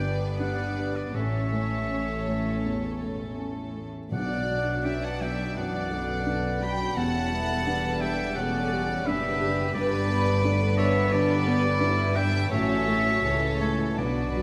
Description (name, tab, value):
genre	cinematic, emotional film score for orchestra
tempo	79-88 BPM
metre	4/4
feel	rubato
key	unclear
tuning	A4 = 440 Hz
part	warm symphonic violin section	melody	0.0-14.4 s	A4 to G5	-36 LUFS	equal	none
part	clear clarinet	second line	0.0-14.4 s	C#5 to B5	-32 LUFS	equal	none
part	rich studio violin section	second line	0.0-14.4 s	B3 to D5	-36 LUFS	equal	none
part	dark studio viola section	accompaniment	0.0-14.4 s	C#3 to G4	-37 LUFS	equal	none
part	felt-muted upright piano	accompaniment	0.0-14.4 s	A1 to G4	-34 LUFS	equal	none
part	dark chamber cello section	bass	0.0-14.4 s	E2 to C#3	-35 LUFS	equal	none
part	rich symphonic double bass section	bass	0.0-14.4 s	E1 to C#2	-35 LUFS	equal	none
part	timpani	percussion	4.1-5.2, 14.0-14.4 s	B2	-40 LUFS	equal	none
room	wet scoring stage reverb, RT60 1.8 s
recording	lossy compression artefacts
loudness	-26 LUFS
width	mono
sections	0.0-14.4 A section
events	timpani fill 14.0-14.4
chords	0.0 G; 1.1 A; 4.1 Bm; 7.0 Em7; 9.7 G; 12.5 A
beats	0.40 | 1.14 1.89 2.64 3.38 | 4.12 4.85 5.56 6.27 | 6.97 7.67 8.37 9.06 | 9.75 10.44 11.13 11.81 | 12.52 13.24 13.99